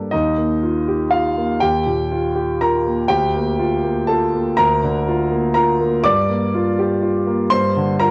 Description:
neoclassical minimalist piano; 122 BPM; 3/4; rubato; A4 = 443 Hz
warm concert grand piano; solo; 0.0-8.1 s; D2 to D6; -18 LUFS; equal; cassette tape
light reverb, studio reverb; home recording on cassette; -18 LUFS; mono
0.1-8.1 A section
0.1 Ebadd9; 3.1 Bb/D; 6.1 Gm7

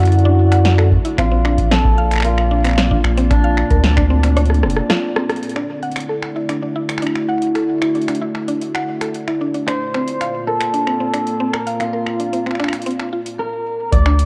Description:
IDM; 113 BPM; 4/4; straight; A4 = 436 Hz
electric guitar at the edge of break-up; melody; 0.0-5.1, 9.7-14.3 s; D4 to D5; -24 LUFS; equal; vintage 12-bit sampler grit, delay, shimmer reverb
warbly tape-like pad; sustained chords; 0.0-14.3 s; Bb2 to D5; -26 LUFS; equal; chorus, built-in reverb, sidechain pumping
mallet-like synth pluck; arpeggios; 0.0-14.1 s; C4 to F#5; -25 LUFS; equal; chorus, delay
round analog bass; bass; 0.0-4.8, 13.9-14.3 s; F1 to F#2; -17 LUFS; equal
electro analog drum machine; drums; 0.0-14.3 s; finger snaps, hi-hat, rim click, snare drum; -25 LUFS; equal
electronic kick drum; drums; 0.9-4.1, 13.9-14.0 s; -20 LUFS; equal
moderate lush hall reverb, RT60 1.9 s, digital ambience; worn, warbling old tape, cassette tape, warbly pitch drift; -17 LUFS; mono
0.0-5.4 A section; 5.4-13.9 B section
break 4.4-5.4; drum fill 4.4-5.4; band accent 5.3; filter sweep on synth arpeggio sound 5.4-13.9
0.0 Dadd9; 1.2 Bbadd9; 5.4 Dadd9; 9.7 Bbadd9

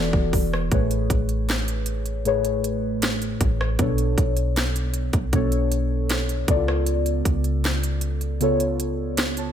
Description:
contemporary R&B; 78 BPM; 4/4; straight; A major; A4 = 440 Hz
muted felt-like synth keys; accompaniment; 0.0-9.5 s; A2 to A5; -24 LUFS; left 2 dB; chorus, phaser
clean 808-style bass; bass; 0.0-9.5 s; E1 to C#2; -25 LUFS; equal
trap drum kit; drums; 0.1-9.5 s; hi-hat, kick drum, rim click, snare drum; -24 LUFS; right 1 dB
light reverb, digital ambience; -20 LUFS; side -9 dB against mid
0.7-9.5 A section
0.0 E7sus4; 0.7 Amaj9; 3.8 Bm9; 6.5 C#7b9b13

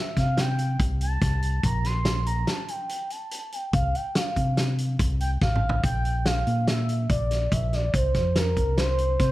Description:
progressive instrumental, band music in an uneven meter; 143 BPM; 5/4; straight; C mixolydian; A4 = 440 Hz
expressive synth lead; melody; 0.0-9.3 s; Bb4 to C6; -29 LUFS; right 1 dB; chorus, plate reverb
deep dub fingered electric bass; bass; 0.2-9.3 s; A1 to C3; -25 LUFS; equal
loose indie drum kit; drums; 0.2-9.3 s; hi-hat, kick drum, snare drum, toms; -27 LUFS; equal
light reverb; -22 LUFS; side -16 dB against mid
0.0-5.8 A section; 5.8-9.3 B section
analog synth lead solo 0.0-5.8; drum fill 5.4-5.8
0.0 C5; 1.6 Gmadd9/Bb; 3.7 Csus4; 5.8 Bb; 7.9 C7sus4

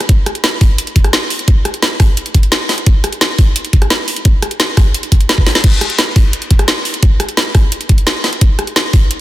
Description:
drum and bass; 173 BPM; 4/4; straight
drum and bass drum kit; drums; 0.0-9.2 s; crash cymbal, hi-hat, rim click, snare drum; -15 LUFS; equal
electronic kick drum; drums; 0.1-9.0 s; -9 LUFS; equal
light reverb; dense, heavily limited modern master; -10 LUFS; side -15 dB against mid
0.0-9.2 A section
drum fill 5.5

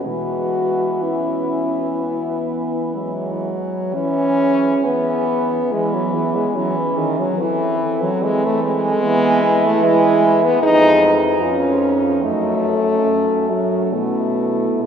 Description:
classical, lyrical piece for horn quartet; 57-76 BPM; 4/4; rubato; E major; A4 = 440 Hz
mellow French horn; melody; 0.0-14.9 s; E4 to B4; -25 LUFS; left 3 dB
dark French horn; second line; 0.0-14.9 s; G#3 to G#4; -23 LUFS; right 5 dB
mellow French horn; accompaniment; 0.0-14.9 s; D#3 to D#4; -18 LUFS; left 1 dB
warm French horn; bass; 0.0-14.9 s; E#2 to E3; -22 LUFS; right 1 dB
wet cathedral reverb, RT60 5.4 s; heard from further back in the room, faint mains hum; -15 LUFS; side -8 dB against mid
0.0-3.9 A section; 3.9-14.9 B section
0.1 E; 7.4 Am/E; 9.0 E5; 10.6 C#7/E#; 12.2 F#m; 13.9 E5/B

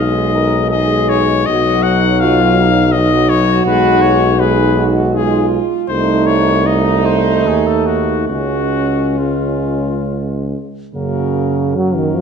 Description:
classical, hymn-like piece for brass band; 67-84 BPM; 3/4; rubato; A4 = 442 Hz
mellow cornet; melody; 0.0-12.2 s; E#4 to F#5; -18 LUFS; left 8 dB
warm French horn section; second line; 0.0-12.2 s; C#4 to Bb4; -19 LUFS; right 3 dB
mellow euphonium; accompaniment; 0.0-12.2 s; A#3 to D#4; -21 LUFS; equal
mellow trombone; accompaniment; 0.0-12.2 s; C#3 to A3; -19 LUFS; right 2 dB
clear tuba; bass; 0.0-12.2 s; B1 to F#2; -18 LUFS; equal
moderate recital hall reverb, RT60 1.3 s; dark, warm production, nothing above 10.8 kHz; -12 LUFS; side -6 dB against mid
0.0-10.9 A section; 10.9-12.2 B section
0.0 Abm/Cb; 1.5 B; 3.7 G#m/B; 5.9 Cm6; 8.3 C#; 10.9 F#

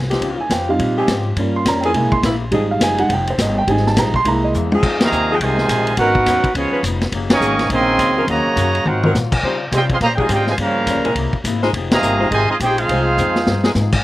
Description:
jazz, big band swing; 208 BPM; 4/4; swing 62% on 8ths; F minor; A4 = 439 Hz
upright bass; bass; 0.0-14.0 s; F1 to Db3; -22 LUFS; left 1 dB
vintage drum kit; drums; 0.0-14.0 s; crash cymbal, hi-hat, kick drum, ride cymbal, snare drum, toms; -21 LUFS; left 1 dB
warm saxophone section; sustained chords; 0.1-2.6, 4.7-13.7 s; E3 to C5; -20 LUFS; left 1 dB
picked swing-style acoustic guitar; accompaniment; 0.2-14.0 s; Ab2 to Bb4; -27 LUFS; left 6 dB; slapback echo
warm concert grand piano; accompaniment; 0.4-4.7 s; G3 to C6; -18 LUFS; right 2 dB
brilliant trumpet section; melody; 5.0-13.8 s; Cb4 to Db6; -19 LUFS; right 2 dB
clear trombone section; second line; 5.0-13.8 s; C3 to G4; -19 LUFS; right 1 dB; slapback echo
little or no reverb; recorded outdoors, with no room sound; -14 LUFS; side -16 dB against mid
0.0-4.8 A section; 4.8-14.0 B section
grand piano solo 0.0-4.8; drum fill 4.5, 8.9, 13.2-13.8; band accent 5.0, 7.3, 11.9
0.2 Dbmaj9#11; 1.4 Gm7b5; 1.9 Caug7; 2.5 Fm7; 4.3 C7alt; 4.8 Fm7; 6.0 Abm11; 6.6 Db9; 7.1 Gb69; 8.3 Ebm7; 8.9 Ab13; 9.4 Dbmaj9#11; 10.6 Gm7b5; 11.2 C7alt; 11.7 Fm7

